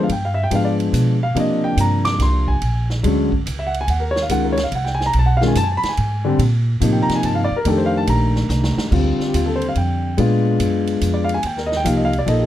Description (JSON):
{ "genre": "jazz piano trio", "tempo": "143 BPM", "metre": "3/4", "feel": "swing 66% on 8ths", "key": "Bb major", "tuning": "A4 = 440 Hz", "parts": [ { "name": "dark baby grand piano", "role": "melody", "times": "0.0-12.5 s", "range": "C3 to D6", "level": "-18 LUFS", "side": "left 1 dB", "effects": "none" }, { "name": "upright bass", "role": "bass", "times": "0.0-12.5 s", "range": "Bb1 to C3", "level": "-19 LUFS", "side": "right 1 dB", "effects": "none" }, { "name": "swinging big-band drum kit", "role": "drums", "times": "0.1-12.4 s", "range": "crash cymbal, hi-hat, kick drum, ride cymbal, snare drum", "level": "-29 LUFS", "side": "right 2 dB", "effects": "none" } ], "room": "little or no reverb", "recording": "dark, warm production", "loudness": "-16 LUFS", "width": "side -12 dB against mid", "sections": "0.0-8.9 A section; 8.9-12.5 A section", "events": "grand piano solo 0.0-8.9, 8.9-12.5; drum fill 8.5-8.9", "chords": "0.1 G7b9; 1.4 C5; 2.6 Bb7alt; 3.9 Ebsus2; 5.1 B5; 6.4 Bbmaj7; 8.9 Dm7; 10.2 Bb7b9; 11.4 Eb6" }